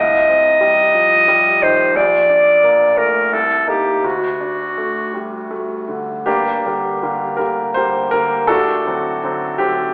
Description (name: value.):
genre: classical, romantic duo for clarinet and grand piano.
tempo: 78-93 BPM.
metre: 3/4.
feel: rubato.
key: G minor.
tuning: A4 = 440 Hz.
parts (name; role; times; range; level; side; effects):
warm clarinet; melody; 0.0-5.9 s; F#4 to Eb5; -15 LUFS; equal; none.
clear baby grand piano; accompaniment; 0.0-9.9 s; Bb1 to C5; -21 LUFS; equal; none.
room: wet recital hall reverb, RT60 1.6 s.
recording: recorded in a church or concert hall, telephone sound.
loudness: -16 LUFS.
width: mono.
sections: 0.0-6.3 A section; 6.3-9.9 B section.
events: none.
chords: 0.0 Cm; 1.9 Bbmaj7; 3.3 Cm7; 4.0 D; 6.3 Gm; 8.5 D7/A.